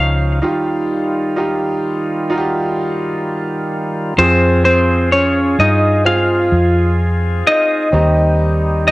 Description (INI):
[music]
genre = pop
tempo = 64 BPM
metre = 4/4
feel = straight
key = F minor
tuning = A4 = 440 Hz
[part]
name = semi-hollow electric guitar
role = melody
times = 0.0-8.9 s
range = C4 to F5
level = -14 LUFS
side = equal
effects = cassette tape
[part]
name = bright upright piano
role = accompaniment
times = 0.0-8.9 s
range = Eb3 to Ab4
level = -21 LUFS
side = right 2 dB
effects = cassette tape
[part]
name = bright tonewheel organ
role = sustained chords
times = 0.0-8.9 s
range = Eb3 to Ab4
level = -22 LUFS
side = equal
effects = overdrive, slow rotary speaker, cassette tape
[part]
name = vintage muted fingered electric bass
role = bass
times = 0.0-8.9 s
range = Db2 to G2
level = -15 LUFS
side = equal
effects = none
[sound]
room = light reverb, digital ambience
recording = home recording on cassette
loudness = -13 LUFS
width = side -19 dB against mid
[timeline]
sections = 0.0-4.2 A section; 4.2-8.9 B section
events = break 0.4-4.2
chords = 0.4 Ebadd9; 4.2 Fm; 7.9 Cm